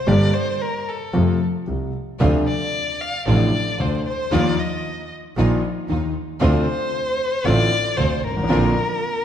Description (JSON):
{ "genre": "tango", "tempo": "114 BPM", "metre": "4/4", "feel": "rubato", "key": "unclear", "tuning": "A4 = 444 Hz", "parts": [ { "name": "warm violin", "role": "second line", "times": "0.0-9.2 s", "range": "A4 to F5", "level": "-24 LUFS", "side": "left 2 dB", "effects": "slapback echo" }, { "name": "warm concert grand piano", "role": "accompaniment", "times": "0.1-8.7 s", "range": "G1 to G4", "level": "-21 LUFS", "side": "left 1 dB", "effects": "none" }, { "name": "clear double bass", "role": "bass", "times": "0.1-8.7 s", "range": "G1 to F2", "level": "-23 LUFS", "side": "right 2 dB", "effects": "none" }, { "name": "clear symphonic string section", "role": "stabs", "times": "2.2-8.7 s", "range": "Bb3 to Bb4", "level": "-32 LUFS", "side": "right 3 dB", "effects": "none" } ], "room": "moderate scoring stage reverb, RT60 2.0 s", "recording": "dark, warm production", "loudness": "-18 LUFS", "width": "side -9 dB against mid", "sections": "0.0-9.2 A section", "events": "violin solo 0.0-9.2", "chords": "0.1 Gm; 1.1 F; 2.2 Dm7; 4.3 Ebsus2; 6.4 Dm7; 8.5 Bbadd9" }